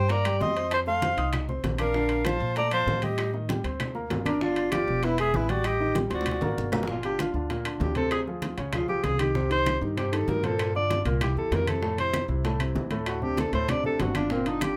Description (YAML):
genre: Afro-Cuban jazz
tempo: 194 BPM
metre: 4/4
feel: straight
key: G minor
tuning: A4 = 441 Hz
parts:
  - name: breathy alto saxophone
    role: melody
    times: 0.0-14.8 s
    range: C4 to F5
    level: -30 LUFS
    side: equal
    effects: none
  - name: breathy bright jazz flute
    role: second line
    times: 0.0-6.7 s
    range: Bb4 to C6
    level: -37 LUFS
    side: equal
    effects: none
  - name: warm concert grand piano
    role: accompaniment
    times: 0.0-14.7 s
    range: A2 to Eb6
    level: -33 LUFS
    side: equal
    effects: none
  - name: upright bass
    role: bass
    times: 0.0-14.7 s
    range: E1 to Bb2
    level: -33 LUFS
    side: equal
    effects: none
  - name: bongos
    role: percussion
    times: 0.1-14.8 s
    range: none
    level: -40 LUFS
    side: equal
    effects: none
  - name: congas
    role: percussion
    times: 0.1-14.8 s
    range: none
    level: -37 LUFS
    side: equal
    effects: none
  - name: timbales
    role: percussion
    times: 0.1-14.8 s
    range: none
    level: -39 LUFS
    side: equal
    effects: none
  - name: claves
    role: percussion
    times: 0.2-14.8 s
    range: none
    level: -42 LUFS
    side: equal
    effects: none
room: moderate studio ambience, RT60 0.5 s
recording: none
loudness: -27 LUFS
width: mono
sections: 0.0-6.9 A section; 6.9-14.8 B section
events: drum fill 6.1-6.9; alto saxophone solo 6.9-14.8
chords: 0.0 Cm11; 0.7 F7; 2.0 Bbmaj9; 3.2 Am7b5; 3.8 Gmadd11; 4.4 G5; 5.0 E; 5.7 Am7b5; 6.3 Daug7; 6.9 Gm7; 8.1 Dm7b5; 8.7 C#add9; 9.4 Cm7; 10.6 Gm7; 11.2 C; 11.8 Fmaj7; 13.1 D5